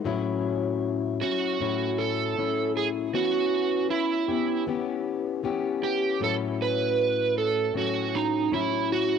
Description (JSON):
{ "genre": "indie pop", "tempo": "78 BPM", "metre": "4/4", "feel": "swing 55% on 16ths", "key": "A major", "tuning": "A4 = 440 Hz", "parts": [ { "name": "fingerpicked plugged-in steel-string acoustic guitar", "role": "accompaniment", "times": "0.0-9.2 s", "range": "A2 to G4", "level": "-27 LUFS", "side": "left 8 dB", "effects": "lush chorus, vibrato effect" }, { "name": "overdriven slide guitar", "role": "melody", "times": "1.2-9.2 s", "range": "D#4 to B4", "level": "-26 LUFS", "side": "right 7 dB", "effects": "lush chorus, cassette tape" } ], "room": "moderate spring reverb, RT60 2.0 s", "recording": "home recording on cassette", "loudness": "-24 LUFS", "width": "side -7 dB against mid", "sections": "0.0-9.2 A section", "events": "none", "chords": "0.0 A6; 3.1 Em6; 6.2 A6" }